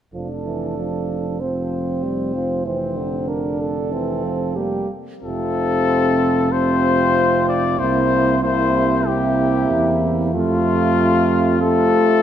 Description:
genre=classical, brass quintet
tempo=94 BPM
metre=4/4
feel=rubato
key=F major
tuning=A4 = 440 Hz
part: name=mellow flugelhorn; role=second line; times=0.1-12.2 s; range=E4 to C5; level=-23 LUFS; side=right 4 dB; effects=none
part: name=clear French horn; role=accompaniment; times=0.1-12.2 s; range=A3 to D4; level=-24 LUFS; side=left 2 dB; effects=none
part: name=warm euphonium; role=accompaniment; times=0.1-12.2 s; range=C3 to G3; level=-25 LUFS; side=right 3 dB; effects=none
part: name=mellow tuba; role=bass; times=0.1-12.0 s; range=F1 to F2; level=-23 LUFS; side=right 3 dB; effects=none
part: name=mellow trumpet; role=melody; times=5.2-12.2 s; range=F4 to D5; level=-20 LUFS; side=left 7 dB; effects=none
room=moderate scoring stage reverb, RT60 2.0 s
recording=none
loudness=-16 LUFS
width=side -10 dB against mid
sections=0.1-5.2 A section; 5.2-12.2 B section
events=none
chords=0.1 F; 2.7 C7/F; 5.2 F; 7.8 C7; 10.3 F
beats=| 0.13 0.78 1.41 2.03 | 2.65 3.28 3.92 4.56 | 5.23 5.87 6.51 7.16 | 7.79 8.43 9.07 9.70 | 10.34 10.97 11.61

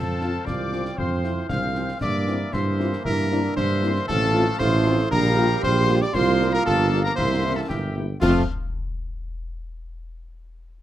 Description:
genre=military-style march for wind band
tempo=116 BPM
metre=2/4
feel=straight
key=F major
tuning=A4 = 441 Hz
part: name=clear cornet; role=melody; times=0.0-8.4 s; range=F4 to F5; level=-27 LUFS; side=equal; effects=none
part: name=bright piccolo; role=second line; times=0.0-8.5 s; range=G5 to F6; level=-30 LUFS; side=left 5 dB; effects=none
part: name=warm woodwind section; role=second line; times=0.0-8.4 s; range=G4 to F5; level=-32 LUFS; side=left 2 dB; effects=none
part: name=clear trombone section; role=sustained chords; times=0.0-8.4 s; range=E3 to C4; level=-34 LUFS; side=right 2 dB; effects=none
part: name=dark tuba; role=bass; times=0.0-8.4 s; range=G1 to G2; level=-23 LUFS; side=right 2 dB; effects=none
part: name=mellow French horn section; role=accompaniment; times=0.2-8.4 s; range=F3 to F4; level=-27 LUFS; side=left 4 dB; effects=none
part: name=concert snare drum, concert bass drum and clash cymbals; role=drums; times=0.2-8.5 s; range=none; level=-32 LUFS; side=left 2 dB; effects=none
part: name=mellow euphonium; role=second line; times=0.5-7.8 s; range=Bb3 to G4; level=-28 LUFS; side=right 5 dB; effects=none
room=light reverb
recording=close, detailed microphones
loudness=-20 LUFS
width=side -12 dB against mid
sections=0.0-8.2 A section; 8.2-9.2 B section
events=none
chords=0.0 F; 2.0 C7/G; 4.1 F/A; 5.1 Gm7/Bb; 6.1 C7sus4; 7.2 C7; 8.2 F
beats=0.47 | 0.98 1.50 | 2.02 2.53 | 3.05 3.56 | 4.08 4.60 | 5.12 5.63 | 6.15 6.67 | 7.18 7.70 | 8.21

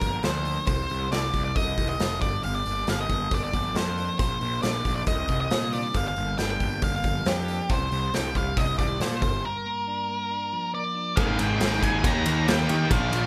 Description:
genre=quiet-loud alternative rock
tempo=137 BPM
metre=4/4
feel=straight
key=C minor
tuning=A4 = 444 Hz
part: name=octave-fuzz lead guitar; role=melody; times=0.0-13.3 s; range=G4 to Bb5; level=-31 LUFS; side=equal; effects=distortion
part: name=clean electric guitar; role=arpeggios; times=0.0-11.2 s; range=G2 to Eb4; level=-38 LUFS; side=equal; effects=phaser
part: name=fuzz picked electric bass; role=bass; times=0.0-13.3 s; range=F1 to Eb3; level=-31 LUFS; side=equal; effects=overdrive
part: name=big rock drum kit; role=drums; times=0.0-13.2 s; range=hi-hat, kick drum, ride cymbal, snare drum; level=-30 LUFS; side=equal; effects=none
part: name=heavy high-gain guitar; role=riff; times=11.2-13.3 s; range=Bb2 to Ab4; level=-33 LUFS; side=equal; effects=distortion
part: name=thick fuzz guitar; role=riff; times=11.2-13.3 s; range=Bb2 to Ab4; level=-29 LUFS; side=equal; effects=distortion
room=moderate large studio reverb, RT60 1.2 s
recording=band playing live in one room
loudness=-26 LUFS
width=mono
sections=0.0-11.2 A section; 11.2-13.3 B section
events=break 9.4-11.2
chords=0.0 Gm7; 0.7 Cm; 2.2 Gm7; 4.2 Bbsus4; 5.1 Cmadd9; 5.9 Gm7; 7.7 Cmadd9; 9.2 Gm7; 11.2 Absus2; 12.0 Eb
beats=0.23 | 0.67 1.11 1.55 1.99 | 2.43 2.87 3.31 3.75 | 4.19 4.63 5.07 5.51 | 5.95 6.38 6.82 7.26 | 7.70 8.13 8.57 9.01 | 9.44 9.88 10.31 10.75 | 11.18 11.62 12.05 12.48 | 12.91

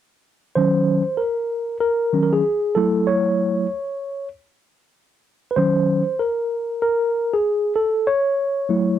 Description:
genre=hip hop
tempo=96 BPM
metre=4/4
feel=swing 63% on 16ths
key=Eb dorian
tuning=A4 = 440 Hz
part: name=mellow tine electric piano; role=solo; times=0.6-9.0 s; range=Eb3 to Db5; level=-18 LUFS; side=equal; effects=medium stereo tremolo
room=light reverb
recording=dry, close 1970s-style studio recording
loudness=-18 LUFS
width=side -10 dB against mid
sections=0.6-9.0 A section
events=tine electric piano solo 0.6-9.0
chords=0.6 Ebm7; 2.8 Gbm7; 5.6 Ebm7; 7.8 Gbm7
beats=| 0.56 1.19 1.81 2.44 | 3.06 3.69 4.31 4.94 | 5.56 6.19 6.81 7.44 | 8.06 8.69

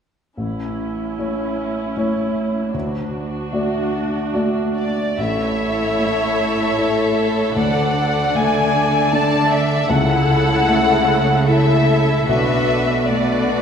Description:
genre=cinematic, emotional film score for orchestra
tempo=76 BPM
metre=3/4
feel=rubato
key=A major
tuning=A4 = 440 Hz
part: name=rich studio viola section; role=accompaniment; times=0.4-13.6 s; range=A3 to F#4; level=-24 LUFS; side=right 1 dB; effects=none
part: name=warm baby grand piano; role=accompaniment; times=0.4-13.6 s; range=A1 to D5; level=-21 LUFS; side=equal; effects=none
part: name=warm studio violin section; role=melody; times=4.8-13.6 s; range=D5 to A5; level=-20 LUFS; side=left 3 dB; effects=none
part: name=clear studio violin section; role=second line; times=5.2-13.6 s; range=F#4 to D5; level=-22 LUFS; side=left 1 dB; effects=none
part: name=warm studio cello section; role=bass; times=5.2-13.6 s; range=A2 to D3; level=-22 LUFS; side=right 3 dB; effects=none
room=wet scoring stage reverb, RT60 1.9 s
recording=heard from further back in the room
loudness=-16 LUFS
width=side -7 dB against mid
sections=0.4-5.2 A section; 5.2-13.6 B section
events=none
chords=0.4 A; 2.7 D; 5.2 A; 7.6 D; 9.9 A/C#; 12.3 Bm7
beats=| 0.37 1.18 1.96 | 2.74 3.53 4.36 | 5.20 6.00 6.79 | 7.57 8.36 9.13 | 9.90 10.68 11.48 | 12.28 13.09

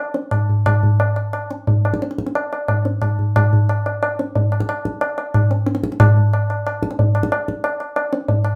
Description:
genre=indian classical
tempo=181 BPM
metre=4/4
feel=straight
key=none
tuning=none
part: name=tabla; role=percussion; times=0.1-8.6 s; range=none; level=-19 LUFS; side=equal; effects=none
room=wet studio reverb, RT60 0.5 s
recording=heard from further back in the room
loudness=-19 LUFS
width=mono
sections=0.0-3.4 A section; 3.4-8.6 B section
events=speeding up 0.0-8.6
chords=none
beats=0.31 | 0.65 0.99 1.33 1.67 | 2.01 2.35 2.69 3.02 | 3.36 3.69 4.03 4.36 | 4.69 5.02 5.35 5.68 | 6.01 6.34 6.66 6.99 | 7.31 7.64 7.96 8.28

